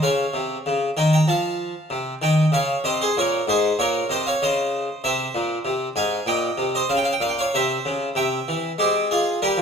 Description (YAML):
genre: classical, baroque-style suite movement for harpsichord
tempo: 95 BPM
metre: 4/4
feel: rubato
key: unclear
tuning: A4 = 439 Hz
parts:
  - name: harpsichord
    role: solo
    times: 0.0-9.6 s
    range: Ab2 to Bb5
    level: -19 LUFS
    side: equal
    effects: none
room: moderate recital hall reverb, RT60 1.4 s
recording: minimal, uncompressed stereo recording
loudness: -19 LUFS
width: side -6 dB against mid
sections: 0.0-9.6 A section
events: none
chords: 0.0 Ab/C (rootless); 1.3 F7; 2.5 Bbm; 3.8 Dbmaj13/Bb; 5.0 C; 6.3 Bbm; 7.5 C; 8.8 Fm/Ab